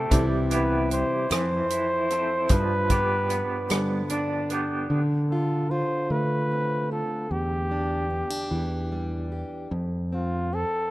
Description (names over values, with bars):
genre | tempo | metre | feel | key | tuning
folk | 50 BPM (dotted quarters) | 6/8 | straight | unclear | A4 = 439 Hz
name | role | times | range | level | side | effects
warm flugelhorn | melody | 0.0-10.9 s | F4 to C5 | -27 LUFS | equal | none
fingerpicked plugged-in steel-string acoustic guitar | accompaniment | 0.0-10.9 s | E2 to G4 | -29 LUFS | equal | none
electric guitar through a small old amp | arpeggios | 0.0-5.0 s | E3 to A4 | -30 LUFS | right 3 dB | tremolo
fingered electric bass | bass | 0.1-10.6 s | C2 to G3 | -28 LUFS | equal | none
natural country drum kit | drums | 0.1-4.7 s | hi-hat, kick drum, rim click | -25 LUFS | equal | none
room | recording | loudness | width
studio reverb | rough home demo mix, lossy compression artefacts | -23 LUFS | side -17 dB against mid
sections
0.0-4.9 A section; 4.9-10.9 B section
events
none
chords
0.1 Cmaj7; 1.3 Fmaj7; 2.5 G7; 4.9 Dm7; 7.3 Em7; 9.7 Dm7/F (rootless)